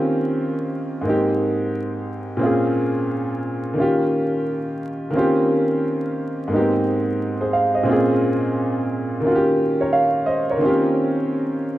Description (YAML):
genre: hip hop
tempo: 88 BPM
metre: 4/4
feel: swing 64% on 16ths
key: unclear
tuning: A4 = 440 Hz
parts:
  - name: clear upright piano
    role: solo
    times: 0.0-11.8 s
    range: Ab2 to F5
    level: -18 LUFS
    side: equal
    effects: cassette tape, low-pass filter
room: moderate lush hall reverb, RT60 2.4 s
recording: rough home demo mix, vinyl crackle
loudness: -18 LUFS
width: side -14 dB against mid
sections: 0.0-11.8 A section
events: none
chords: 0.0 Eb13; 1.1 Abmaj9; 2.4 Bbm9; 3.8 Eb9; 5.1 Eb13; 6.5 Abmaj9; 7.9 Bbm9; 9.2 Eb9; 10.6 Eb13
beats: 0.37 1.05 1.74 | 2.42 3.10 3.78 4.46 | 5.14 5.83 6.51 7.19 | 7.87 8.55 9.24 9.92 | 10.60 11.28